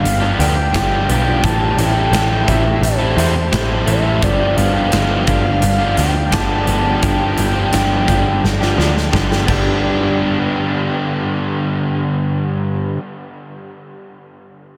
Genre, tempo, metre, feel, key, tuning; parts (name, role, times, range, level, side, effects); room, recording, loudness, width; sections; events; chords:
rock, shoegaze and dream pop; 86 BPM; 4/4; straight; G mixolydian; A4 = 439 Hz
breathy flute-like synth lead; melody; 0.0-9.1 s; C5 to A5; -24 LUFS; equal; chorus, delay
direct-recorded clean electric guitar; arpeggios; 0.0-13.0 s; E3 to G4; -32 LUFS; equal
electric guitar through a small old amp; riff; 0.0-13.0 s; G2 to E4; -25 LUFS; equal; reverse reverb
overdriven electric guitar; riff; 0.0-13.0 s; G2 to A4; -22 LUFS; equal; analog chorus
overdriven picked electric bass; bass; 0.0-12.6 s; G1 to E2; -21 LUFS; equal
huge arena drum kit; drums; 0.1-9.6 s; crash cymbal, hi-hat, kick drum, snare drum; -24 LUFS; equal
wet huge ambient reverb, RT60 8.7 s; dreamy mix soaked in reverb; -16 LUFS; mono
0.0-9.8 A section; 9.8-12.6 B section
drum fill 8.4-9.8
0.0 G7; 1.4 Am7; 4.2 G7; 7.0 G7(no3); 9.5 G